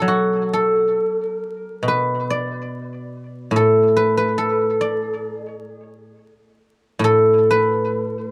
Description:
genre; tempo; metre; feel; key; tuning
chinese traditional, Chinese solo plucked strings; 65-73 BPM; 2/4; rubato; unclear; A4 = 441 Hz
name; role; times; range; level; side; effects
guzheng; solo; 0.0-8.3 s; A2 to D5; -20 LUFS; equal; tape echo
room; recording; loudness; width
light reverb; dry, close 1970s-style studio recording, vinyl crackle; -19 LUFS; mono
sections
0.0-7.0 A section; 7.0-8.3 B section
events
none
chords
none

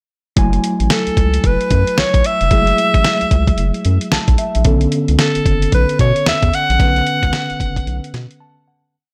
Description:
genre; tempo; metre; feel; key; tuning
R&B, new jack swing; 112 BPM; 4/4; swing 61% on 16ths; F# minor; A4 = 441 Hz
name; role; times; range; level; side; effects
mellow tine electric piano; accompaniment; 0.4-9.0 s; C#3 to A5; -23 LUFS; equal; none
round analog bass; bass; 0.4-8.3 s; E#1 to B2; -19 LUFS; equal; none
dusty soul sampler-style drum kit; drums; 0.4-8.4 s; hi-hat, kick drum, snare drum; -19 LUFS; equal; none
breathy alto saxophone; melody; 0.9-8.1 s; A4 to F#5; -20 LUFS; equal; none
room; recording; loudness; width
digital ambience; none; -15 LUFS; mono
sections
0.4-8.9 verse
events
tine electric piano fill 3.9-4.7, 8.1-8.9; fade-out 6.8-8.9; break 8.4-8.9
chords
0.4 F#m9; 4.7 Bm9

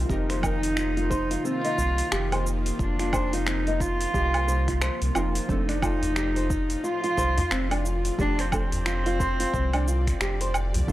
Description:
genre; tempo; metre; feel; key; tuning
organic downtempo; 89 BPM; 4/4; swing 60% on 16ths; F mixolydian; A4 = 440 Hz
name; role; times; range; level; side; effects
bowed-like drone; sustained chords; 0.0-10.9 s; A2 to D5; -36 LUFS; left 1 dB; built-in reverb, sidechain pumping
flamenco guitar; arpeggios; 0.0-10.9 s; C4 to C5; -31 LUFS; equal; tape echo
round analog bass; bass; 0.0-10.9 s; F1 to C2; -27 LUFS; equal; sidechain pumping
warm cello; melody; 0.1-10.9 s; C4 to F4; -29 LUFS; equal; analog delay
deep mellow chord stab; accompaniment; 0.1-10.9 s; F3 to D5; -34 LUFS; right 3 dB; chorus, sidechain pumping, tape echo
deep house drum kit; drums; 0.1-10.9 s; cabasa, finger snaps, hi-hat, woodblock; -31 LUFS; right 1 dB; overdrive
electronic kick drum; drums; 0.1-10.9 s; none; -30 LUFS; equal; overdrive
udu; percussion; 6.0-10.9 s; none; -31 LUFS; equal; none
room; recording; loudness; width
digital ambience; dry, gritty hardware recording, transformer saturation; -23 LUFS; side -15 dB against mid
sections
0.0-10.9 A section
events
none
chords
0.0 F7sus4; 5.5 Dm/F

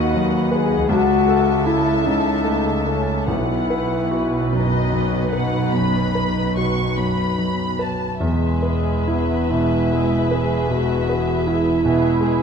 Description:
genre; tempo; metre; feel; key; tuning
classical, romantic movement for piano and orchestra; 44-55 BPM (dotted quarters); 12/8; rubato; E major; A4 = 440 Hz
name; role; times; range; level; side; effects
clear concert grand piano; melody; 0.0-12.4 s; B1 to B4; -21 LUFS; equal; none
muted studio violin section; melody; 0.0-12.4 s; D#5 to C#6; -29 LUFS; left 2 dB; none
muted studio violin section; second line; 0.0-12.4 s; G#4 to E5; -31 LUFS; left 2 dB; none
muted symphonic viola section; accompaniment; 0.0-12.4 s; G#4 to B4; -30 LUFS; right 2 dB; none
warm French horn section; sustained chords; 0.0-12.4 s; G#3 to G#4; -22 LUFS; left 3 dB; none
muted studio double bass section; bass; 0.0-12.4 s; E1 to D#2; -27 LUFS; right 6 dB; none
muted symphonic cello section; bass; 0.0-12.4 s; C#2 to B2; -27 LUFS; right 4 dB; none
timpani; percussion; 3.3-4.5 s; B2; -34 LUFS; right 2 dB; none
room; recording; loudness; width
moderate scoring stage reverb, RT60 1.5 s; close, detailed microphones; -17 LUFS; side -6 dB against mid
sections
0.0-12.4 A section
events
none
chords
0.0 B/D#; 0.9 A/C#; 3.3 B; 8.2 E

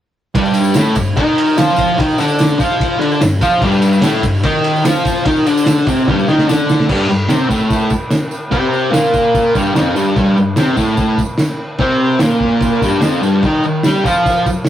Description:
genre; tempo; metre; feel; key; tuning
garage rock duo or trio; 147 BPM; 4/4; straight; G minor; A4 = 438 Hz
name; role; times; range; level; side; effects
cloth-damped thuddy drum kit; drums; 0.3-14.7 s; crash cymbal, kick drum, ride cymbal, snare drum; -17 LUFS; equal; none
tambourine; percussion; 0.3-14.7 s; none; -34 LUFS; right 6 dB; none
fuzz guitar; riff; 0.4-14.5 s; F2 to G4; -13 LUFS; equal; distortion
room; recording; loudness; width
moderate stone room reverb, RT60 1.3 s; rough rehearsal-room recording; -12 LUFS; side -11 dB against mid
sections
0.4-6.9 A section; 6.9-14.7 B section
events
drum fill 6.1-6.9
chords
0.4 G5; 6.9 Gm; 13.4 Ebadd9

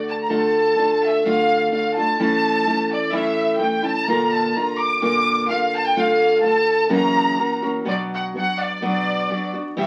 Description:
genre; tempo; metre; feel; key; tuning
mexican folk, mariachi; 127 BPM; 2/4; straight; D harmonic minor; A4 = 444 Hz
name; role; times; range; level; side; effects
rich studio violin section; melody; 0.0-9.9 s; D5 to D6; -23 LUFS; equal; none
nylon-string guitar; accompaniment; 0.0-9.9 s; E2 to G4; -22 LUFS; equal; none
room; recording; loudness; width
wet studio reverb, RT60 0.6 s; very old 78 rpm record, vinyl crackle; -20 LUFS; mono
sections
0.3-7.9 A section; 7.9-9.9 B section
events
none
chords
0.3 Dm; 2.2 A; 4.1 Bb; 6.0 Dm; 6.9 F#7; 7.9 Bm

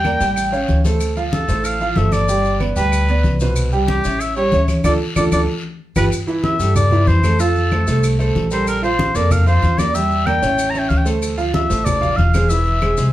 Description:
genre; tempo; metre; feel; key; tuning
Afro-Cuban jazz; 188 BPM; 4/4; straight; C major; A4 = 438 Hz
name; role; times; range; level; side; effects
clear oboe; melody; 0.0-13.1 s; G4 to Bb5; -20 LUFS; left 1 dB; none
clear baby grand piano; accompaniment; 0.0-13.1 s; B2 to G5; -21 LUFS; right 3 dB; none
upright bass; bass; 0.0-13.1 s; E1 to G2; -18 LUFS; equal; none
claves; percussion; 0.0-13.0 s; none; -33 LUFS; right 5 dB; none
congas; percussion; 0.0-13.1 s; none; -23 LUFS; left 1 dB; none
guiro; percussion; 0.0-13.1 s; none; -35 LUFS; left 5 dB; none
maracas; percussion; 0.0-13.1 s; none; -33 LUFS; left 4 dB; none
room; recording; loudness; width
moderate studio reverb, RT60 0.5 s; heard from further back in the room; -14 LUFS; side -14 dB against mid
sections
0.0-6.1 A section; 6.1-13.1 B section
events
band accent 4.8-6.1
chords
0.4 A7alt; 1.0 Dm7; 2.3 G; 3.6 Cmaj7; 4.2 A7; 4.8 Dm; 5.5 G7; 6.1 C6; 7.4 Fadd9; 8.7 Bbmaj9#11; 9.9 Em7b5; 10.6 A; 11.2 Dm9; 12.5 Eaug

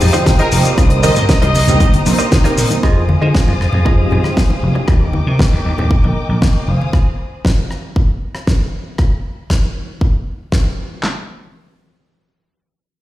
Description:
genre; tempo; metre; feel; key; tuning
nu-disco, nu disco; 117 BPM; 4/4; straight; F dorian; A4 = 439 Hz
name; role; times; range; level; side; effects
mellow synth brass; accompaniment; 0.0-5.1 s; F3 to G5; -20 LUFS; right 1 dB; chorus, phaser, sidechain pumping, ping-pong delay
muted chamber violin section; sustained chords; 0.0-6.9 s; Ab4 to Eb6; -24 LUFS; left 2 dB; sidechain pumping
vintage slap bass; bass; 0.0-6.8 s; F1 to D3; -15 LUFS; equal; none
damped 70s drum kit; drums; 0.0-10.6 s; hi-hat, rim click, shaker, snare drum; -21 LUFS; equal; none
cabasa, congas and bongos; percussion; 0.0-6.9 s; none; -22 LUFS; left 2 dB; none
direct-recorded clean electric guitar; riff; 0.1-4.8 s; F4 to Eb5; -22 LUFS; right 2 dB; wide subtle chorus, ping-pong delay
pop drum kit; drums; 0.3-11.2 s; handclaps, kick drum, snare drum; -15 LUFS; equal; none
clear trumpet section; melody; 0.4-1.9 s; Bb4 to Eb5; -22 LUFS; equal; dub echo
room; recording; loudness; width
light reverb, small room ambience; played on a big sound system in a bare room, large studio reverb; -12 LUFS; side -15 dB against mid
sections
0.0-2.8 A section; 2.8-11.0 B section; 11.0-13.0 C section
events
drop 0.0-2.8; filter sweep on analog polysynth 2.8-4.9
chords
0.0 Fm7; 0.8 Cm7; 2.8 Fm7; 4.9 Ebmaj7; 6.7 Fm7; 9.0 N.C.

